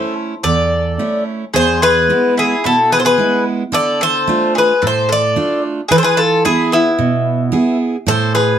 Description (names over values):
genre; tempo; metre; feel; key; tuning
greek folk, Greek bouzouki band; 110 BPM; 4/4; straight; unclear; A4 = 440 Hz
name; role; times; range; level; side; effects
Greek bouzouki; melody; 0.0-8.6 s; E4 to D5; -14 LUFS; left 2 dB; none
bowl-back mandolin; second line; 0.0-8.6 s; B3 to A4; -20 LUFS; left 1 dB; none
picked steel-string acoustic guitar; accompaniment; 0.0-8.6 s; E2 to G#4; -18 LUFS; right 4 dB; none
room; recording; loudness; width
light reverb; close, detailed microphones; -12 LUFS; side -9 dB against mid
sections
0.0-1.5 A section; 1.5-8.6 B section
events
speeding up 0.0-8.6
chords
0.0 A; 1.5 E; 3.7 Dm; 5.9 E; 8.1 N.C.